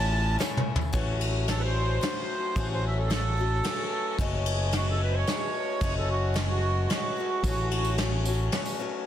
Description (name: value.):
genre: folk rock and heartland rock.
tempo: 111 BPM.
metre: 3/4.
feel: straight.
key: A major.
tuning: A4 = 440 Hz.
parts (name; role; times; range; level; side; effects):
accordion; melody; 0.0-8.0 s; F4 to A5; -32 LUFS; right 4 dB; none.
picked swing-style acoustic guitar; accompaniment; 0.0-9.1 s; F#2 to A4; -33 LUFS; left 6 dB; none.
picked electric bass; bass; 0.0-8.5 s; F#1 to A1; -27 LUFS; equal; none.
tambourine; percussion; 0.0-0.9, 7.4-8.8 s; none; -42 LUFS; right 8 dB; none.
soft brush drum kit; drums; 0.4-8.7 s; kick drum, ride cymbal, snare drum, toms; -30 LUFS; equal; none.
room: small room ambience.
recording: dense, heavily limited modern master.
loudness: -25 LUFS.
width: side -10 dB against mid.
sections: 0.9-9.1 A section.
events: drum fill 0.4-0.9; accordion solo 0.9-9.1.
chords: 0.0 A; 0.9 A6; 4.2 F#madd9; 7.4 A6.